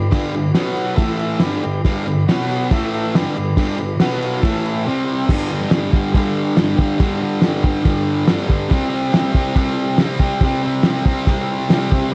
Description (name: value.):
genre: garage rock duo or trio.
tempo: 140 BPM.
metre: 4/4.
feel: straight.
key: G major.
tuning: A4 = 445 Hz.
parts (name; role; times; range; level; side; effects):
combo organ; sustained chords; 0.0-5.3, 12.1 s; E4 to B5; -30 LUFS; equal; spring reverb.
fuzz guitar; riff; 0.0-12.1 s; G2 to C4; -21 LUFS; equal; distortion.
cloth-damped thuddy drum kit; drums; 0.1-12.0 s; crash cymbal, kick drum, snare drum; -21 LUFS; equal; none.
room: light reverb.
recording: cassette tape.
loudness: -18 LUFS.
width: mono.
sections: 0.0-5.3 A section; 5.3-12.1 B section.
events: transistor combo organ fill 1.2-1.8.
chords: 0.0 G; 0.5 B5; 1.0 A5; 1.4 G; 2.3 B5; 2.7 A5; 3.1 G; 4.0 B5; 4.4 A5; 4.9 C5; 5.3 G5; 8.7 C5.